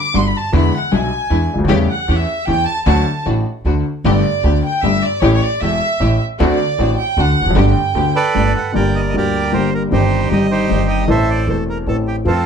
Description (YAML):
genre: tango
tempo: 154 BPM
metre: 3/4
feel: rubato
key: G major, G minor from 8.7 s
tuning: A4 = 440 Hz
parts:
  - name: warm chamber violin section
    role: second line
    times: 0.0-8.6 s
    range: C#5 to D6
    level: -19 LUFS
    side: right 2 dB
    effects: none
  - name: clear upright piano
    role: accompaniment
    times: 0.1-12.5 s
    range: E1 to A4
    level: -17 LUFS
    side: left 2 dB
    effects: none
  - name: rich studio string section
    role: stabs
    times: 0.1-8.5 s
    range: G3 to G4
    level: -26 LUFS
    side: right 2 dB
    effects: none
  - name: upright bass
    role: bass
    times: 0.1-12.5 s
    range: E1 to F2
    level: -18 LUFS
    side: right 1 dB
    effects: none
  - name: bandoneon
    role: melody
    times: 8.2-12.5 s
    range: C4 to G5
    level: -19 LUFS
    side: right 4 dB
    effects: none
room: moderate studio reverb, RT60 0.7 s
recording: dark, warm production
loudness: -13 LUFS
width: side -7 dB against mid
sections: 0.0-8.7 A section; 8.7-12.5 B section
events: violin section solo 0.0-8.7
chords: 0.0 Gmaj7; 0.5 E7; 1.7 A7/E; 2.9 D; 4.0 Gadd9; 5.2 A7; 6.4 D7; 7.6 Gadd9; 8.7 Gm; 9.9 Cm/G; 11.1 Am